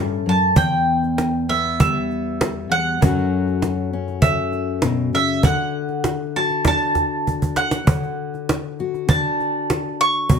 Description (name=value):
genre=acoustic folk duo or small band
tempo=99 BPM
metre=4/4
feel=straight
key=unclear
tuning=A4 = 440 Hz
part: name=mandolin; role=melody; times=0.0-10.4 s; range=E5 to C#6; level=-21 LUFS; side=right 2 dB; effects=none
part: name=fingerpicked steel-string acoustic guitar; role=accompaniment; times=0.0-10.4 s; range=E2 to F#4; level=-23 LUFS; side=left 4 dB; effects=none
part: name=cajon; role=percussion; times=0.3-10.4 s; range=none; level=-19 LUFS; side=right 2 dB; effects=none
room=light reverb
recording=close, detailed microphones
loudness=-18 LUFS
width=side -6 dB against mid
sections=0.0-10.4 A section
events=drum fill 7.3-7.9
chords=0.0 A; 0.6 Em; 3.0 F#m; 5.4 D